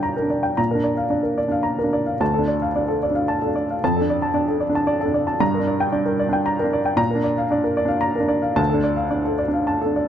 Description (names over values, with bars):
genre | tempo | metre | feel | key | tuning
neoclassical minimalist piano | 112 BPM | 3/4 | rubato | G minor | A4 = 440 Hz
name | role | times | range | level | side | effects
clear upright piano | solo | 0.0-10.1 s | D2 to Bb5 | -18 LUFS | equal | none
room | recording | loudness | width
light reverb | close, detailed microphones | -18 LUFS | side -9 dB against mid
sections
0.0-10.1 A section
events
none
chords
0.0 Gm; 0.6 Bb; 2.2 Dm; 3.8 F6; 5.4 Gm; 7.0 Bb; 8.6 Dm